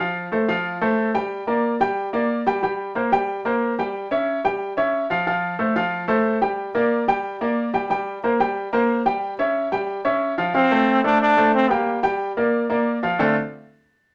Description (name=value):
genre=latin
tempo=182 BPM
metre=4/4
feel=straight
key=D minor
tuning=A4 = 443 Hz
part: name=clear grand piano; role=accompaniment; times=0.0-13.3 s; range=D3 to G5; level=-22 LUFS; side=equal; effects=none
part: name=bright trombone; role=melody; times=10.5-12.0 s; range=Bb3 to D4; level=-20 LUFS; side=equal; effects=none
room=wet studio reverb, RT60 0.6 s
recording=none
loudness=-21 LUFS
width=mono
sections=0.0-10.5 A section; 10.5-13.2 B section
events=none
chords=0.0 Fadd9; 1.3 Gm; 2.6 C5; 3.9 C#dim; 5.3 Fadd9; 6.6 Gm; 7.9 C5; 9.2 C#dim; 10.5 Dm7; 11.9 Gm; 13.2 Dm7